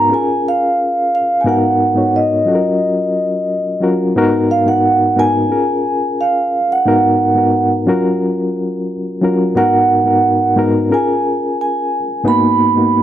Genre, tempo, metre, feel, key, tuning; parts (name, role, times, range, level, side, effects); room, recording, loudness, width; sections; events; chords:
soul; 89 BPM; 4/4; straight; G# dorian; A4 = 440 Hz
vibraphone with soft mallets; melody; 0.0-13.0 s; D#5 to B5; -14 LUFS; right 2 dB
reed electric piano; accompaniment; 0.0-13.0 s; G#2 to C#5; -15 LUFS; left 2 dB; fast tremolo
moderate echo chamber reverb, RT60 1.6 s; -12 LUFS; side -11 dB against mid
0.0-13.0 A section
0.1 A#m7; 1.5 G#m7; 2.5 D#m7/F#; 4.2 G#m7; 5.5 A#m7; 6.9 G#m7; 7.9 F#maj7; 9.6 G#m7; 10.9 A#m7; 12.3 G#m7